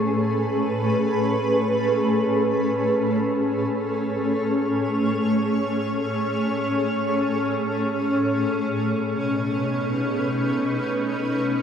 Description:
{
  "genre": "ambient",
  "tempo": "free time",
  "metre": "none",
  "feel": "none",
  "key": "A lydian",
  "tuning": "A4 = 440 Hz",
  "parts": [
    { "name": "granular cloud pad", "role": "solo", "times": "0.0-11.6 s", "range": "A2 to C#5", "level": "-21 LUFS", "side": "equal", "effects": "built-in reverb, analog delay" }
  ],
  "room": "wet spring reverb, RT60 2.5 s",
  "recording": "echo-heavy mix",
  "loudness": "-21 LUFS",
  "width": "side -8 dB against mid",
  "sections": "0.0-11.6 A section",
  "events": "none",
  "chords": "0.0 Amaj7; 8.6 B7",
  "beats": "free time"
}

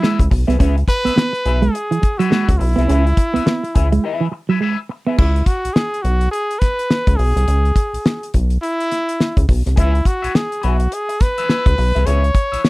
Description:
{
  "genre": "funk",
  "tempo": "105 BPM",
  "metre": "4/4",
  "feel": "swing 60% on 16ths",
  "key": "C# minor",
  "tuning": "A4 = 442 Hz",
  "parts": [
    { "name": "breathy trumpet", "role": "melody", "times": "0.0-12.7 s", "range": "E4 to C#5", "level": "-21 LUFS", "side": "equal", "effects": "none" },
    { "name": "electric guitar at the edge of break-up", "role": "accompaniment", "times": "0.0-5.2, 9.8-12.7 s", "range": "G#4 to E5", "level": "-25 LUFS", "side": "left 6 dB", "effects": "wah" },
    { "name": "semi-hollow electric guitar", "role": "riff", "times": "0.0-5.2 s", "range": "E3 to C#4", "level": "-18 LUFS", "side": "right 4 dB", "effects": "none" },
    { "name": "damped 70s drum kit", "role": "drums", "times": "0.0-12.7 s", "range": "crash cymbal, hi-hat, kick drum, snare drum", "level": "-16 LUFS", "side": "equal", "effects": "none" },
    { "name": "rubbery square bass", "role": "bass", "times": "0.2-12.6 s", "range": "B1 to C#2", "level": "-15 LUFS", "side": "equal", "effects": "none" }
  ],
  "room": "little or no reverb",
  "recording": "dry, close 1970s-style studio recording",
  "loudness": "-14 LUFS",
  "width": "side -20 dB against mid",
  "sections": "0.0-5.2 A section; 5.2-12.7 B section",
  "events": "break 4.0-5.2",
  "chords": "0.0 C#m7",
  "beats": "0.03 | 0.60 1.17 1.75 2.32 | 2.89 3.47 4.04 4.62 | 5.19 5.76 6.34 6.91 | 7.48 8.06 8.63 9.20 | 9.78 10.35 10.92 11.49 | 12.07 12.64"
}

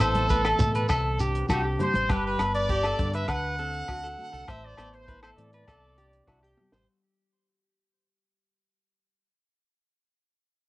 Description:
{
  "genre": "highlife guitar band",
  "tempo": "100 BPM",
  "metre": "4/4",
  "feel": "straight",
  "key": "unclear",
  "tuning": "A4 = 435 Hz",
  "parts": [
    { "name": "brilliant horn section", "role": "melody", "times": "0.0-6.5 s", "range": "G4 to F#5", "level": "-29 LUFS", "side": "right 1 dB", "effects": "cassette tape" },
    { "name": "nylon-string guitar", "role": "accompaniment", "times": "0.0-9.3 s", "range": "G2 to G4", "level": "-34 LUFS", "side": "left 3 dB", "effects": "none" },
    { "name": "electric guitar at the edge of break-up", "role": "arpeggios", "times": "0.0-6.9 s", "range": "F#4 to C5", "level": "-33 LUFS", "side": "right 2 dB", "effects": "none" },
    { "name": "deep dub fingered electric bass", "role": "bass", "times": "0.0-6.9 s", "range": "G1 to A2", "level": "-31 LUFS", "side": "equal", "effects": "none" },
    { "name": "compact cocktail drum kit", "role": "drums", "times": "0.0-6.9 s", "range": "hi-hat, kick drum, rim click, snare drum, toms", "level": "-30 LUFS", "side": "equal", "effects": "cassette tape" },
    { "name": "agogo bells", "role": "percussion", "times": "0.0-6.4 s", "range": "none", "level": "-33 LUFS", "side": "left 3 dB", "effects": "none" },
    { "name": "shekere", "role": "percussion", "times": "0.0-1.6 s", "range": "none", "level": "-31 LUFS", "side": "right 1 dB", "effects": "none" },
    { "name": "congas", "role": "percussion", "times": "0.1-2.1 s", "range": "none", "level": "-31 LUFS", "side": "right 1 dB", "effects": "none" }
  ],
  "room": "little or no reverb",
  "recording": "home recording on cassette, nothing above 10.5 kHz",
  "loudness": "-24 LUFS",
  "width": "side -18 dB against mid",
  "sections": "0.0-6.9 A section",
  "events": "fade-out 0.0-6.9; drum fill 6.6",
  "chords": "0.0 Amadd9; 0.9 Csus2; 2.1 G; 3.3 D7; 4.5 Amadd9; 5.7 Csus2",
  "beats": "0.30 0.90 1.49 | 2.09 2.69 3.28 3.88 | 4.48 5.08 5.67 6.27"
}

